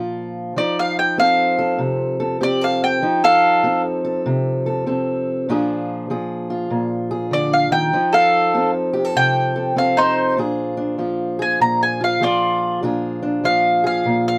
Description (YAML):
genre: acoustic country blues, solo or duo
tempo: 98 BPM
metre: 4/4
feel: swing 65% on 8ths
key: Bb mixolydian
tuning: A4 = 442 Hz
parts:
  - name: fingerpicked steel-string acoustic guitar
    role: accompaniment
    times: 0.0-14.4 s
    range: Bb2 to A4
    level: -23 LUFS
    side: equal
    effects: none
  - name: mandolin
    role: melody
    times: 0.6-14.4 s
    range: Eb4 to Bb5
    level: -18 LUFS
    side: equal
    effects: none
room: light reverb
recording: close, detailed microphones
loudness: -19 LUFS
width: mono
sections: 0.0-10.4 A section; 10.4-14.4 A section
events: mandolin solo 0.0-10.4, 10.4-14.4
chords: 0.0 Bb; 0.6 F7; 5.5 Bb7; 7.9 F7; 10.4 Bb7